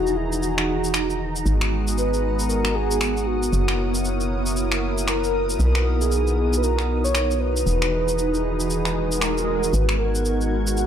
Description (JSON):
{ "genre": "deep house", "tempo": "116 BPM", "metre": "4/4", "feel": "swing 61% on 16ths", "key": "G# minor", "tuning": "A4 = 438 Hz", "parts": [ { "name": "breathy flute-like synth lead", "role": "melody", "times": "0.0-10.9 s", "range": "E4 to C#5", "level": "-26 LUFS", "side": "right 1 dB", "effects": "wide subtle chorus, ping-pong delay" }, { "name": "warm analog pad", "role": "sustained chords", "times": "0.0-10.9 s", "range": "E3 to A#5", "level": "-27 LUFS", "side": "equal", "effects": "chorus" }, { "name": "hollow knocking FM bass", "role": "bass", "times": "0.0-10.9 s", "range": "E1 to B1", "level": "-24 LUFS", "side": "equal", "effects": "none" }, { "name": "analog string pad", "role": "texture", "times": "0.0-10.9 s", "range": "A#5 to G#6", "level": "-38 LUFS", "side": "left 2 dB", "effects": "ensemble chorus" }, { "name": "granular cloud pad", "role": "texture", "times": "0.0-10.9 s", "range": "B3 to A#5", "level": "-29 LUFS", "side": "right 2 dB", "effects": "built-in reverb" }, { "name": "electronic shaker and finger snaps", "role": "drums", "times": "0.1-10.9 s", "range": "none", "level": "-27 LUFS", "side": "left 1 dB", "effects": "overdrive, small room ambience" }, { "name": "swell", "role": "sound effects", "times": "8.9-9.7 s", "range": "none", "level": "-30 LUFS", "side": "right 1 dB", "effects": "none" } ], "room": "light reverb", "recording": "dark, warm production", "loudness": "-20 LUFS", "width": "side -9 dB against mid", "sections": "0.0-10.9 A section", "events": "swell 8.9-9.7", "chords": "0.0 Emaj9; 1.5 G#m9; 3.5 F#7; 5.6 Bmaj7; 7.7 Emaj9; 9.7 G#m9", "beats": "0.42 0.94 | 1.46 1.97 2.49 3.01 | 3.52 4.04 4.56 5.08 | 5.59 6.11 6.63 7.14 | 7.66 8.18 8.70 9.21 | 9.73 10.25 10.77" }